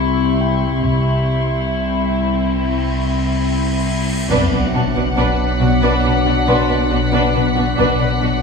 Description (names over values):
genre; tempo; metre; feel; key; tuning
cinematic, suspense film score; 69 BPM; 4/4; straight; B phrygian; A4 = 440 Hz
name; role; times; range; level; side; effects
warm studio violin section; melody; 0.0-8.4 s; E4 to F#5; -23 LUFS; left 5 dB; none
ethereal airy pad; sustained chords; 0.0-8.4 s; B3 to D6; -22 LUFS; left 2 dB; ensemble chorus, built-in reverb
dark studio double bass section; bass; 0.0-8.3 s; B1 to C2; -24 LUFS; right 2 dB; none
warm studio cello section; bass; 0.0-8.3 s; C2 to B2; -24 LUFS; right 2 dB; none
punchy sub bass; drone; 0.0-8.4 s; B1 to C2; -23 LUFS; equal; none
clear concert grand piano; texture; 0.0-8.4 s; G5 to C6; -34 LUFS; left 4 dB; none
dark studio violin section; texture; 0.0-8.4 s; C6 to B6; -30 LUFS; left 4 dB; none
cymbal swell and sub drop; sound effects; 2.7-7.8 s; none; -27 LUFS; equal; none
dark studio violin section; second line; 4.3-8.3 s; F#4 to B4; -23 LUFS; left 1 dB; none
warm studio viola section; accompaniment; 4.3-8.3 s; D4; -22 LUFS; right 4 dB; none
clear trombone section; sustained chords; 4.3-8.4 s; B2 to F#3; -25 LUFS; right 6 dB; none
warm French horn section; sustained chords; 4.3-8.4 s; B3 to D4; -24 LUFS; left 4 dB; none
folk marimba with soft mallets; riff; 4.3-8.4 s; B2 to B3; -23 LUFS; left 12 dB; none
taiko ensemble; drums; 4.3-6.0 s; none; -33 LUFS; right 1 dB; none
timpani; percussion; 4.3-5.6 s; B2; -29 LUFS; equal; none
room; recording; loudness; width
moderate scoring stage reverb, RT60 1.8 s; small room reverb; -14 LUFS; side -5 dB against mid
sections
0.0-4.3 A section; 4.3-8.4 A section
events
cymbal swell 2.7-4.3; impact 4.3-7.8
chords
0.0 C; 4.3 Bm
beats
| 0.82 1.70 2.56 3.43 | 4.30 5.17 6.04 6.91 | 7.78